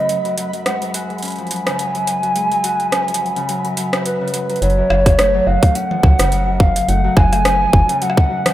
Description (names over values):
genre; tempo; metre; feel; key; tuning
IDM; 106 BPM; 4/4; swing 56% on 16ths; F# minor; A4 = 440 Hz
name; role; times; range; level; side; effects
warbly nostalgic lead; melody; 0.0-8.5 s; B4 to G#5; -18 LUFS; right 1 dB; chorus, dub echo
Celtic harp; arpeggios; 0.0-8.5 s; F#2 to F#4; -23 LUFS; left 3 dB; digital delay
flickering grainy texture; texture; 0.0-4.6 s; B5; -35 LUFS; left 3 dB; built-in reverb
booming analog drum machine; drums; 0.1-8.5 s; cabasa, hi-hat, rim click, toms; -22 LUFS; right 1 dB; overdrive
metallic FM bass; bass; 4.6-7.8 s; F#1 to C#2; -17 LUFS; equal; none
electronic kick drum; drums; 5.1-8.3 s; none; -13 LUFS; equal; none
room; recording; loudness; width
light reverb, digital ambience; rough home demo mix; -14 LUFS; side -14 dB against mid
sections
0.0-4.6 A section; 4.6-8.5 B section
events
none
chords
0.1 G#m; 4.6 F#madd9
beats
| 0.09 0.66 1.22 1.79 | 2.35 2.92 3.49 4.05 | 4.62 5.19 5.75 6.32 | 6.88 7.45 8.02